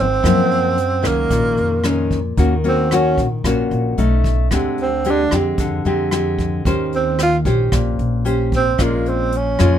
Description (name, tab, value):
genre	bossa nova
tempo	112 BPM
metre	4/4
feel	straight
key	unclear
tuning	A4 = 440 Hz
part	breathy tenor saxophone	melody	0.0-9.8 s	Bb3 to F4	-18 LUFS	right 4 dB	none
part	nylon-string guitar	accompaniment	0.0-9.8 s	Gb2 to C5	-19 LUFS	left 3 dB	none
part	upright bass	bass	0.0-9.8 s	Ab1 to Gb2	-20 LUFS	equal	none
part	jazz brush drum kit	drums	0.2-9.7 s	hi-hat, kick drum, rim click	-24 LUFS	equal	none
room	little or no reverb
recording	minimal, uncompressed stereo recording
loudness	-15 LUFS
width	side -10 dB against mid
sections	0.0-2.4 A section; 2.4-9.8 B section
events	tenor saxophone solo 2.4-9.8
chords	0.2 Gbmaj7; 1.3 Bbm7; 2.4 Ebm7; 4.0 B9; 4.5 Fm69/D; 6.7 Eb6; 8.8 Bbm7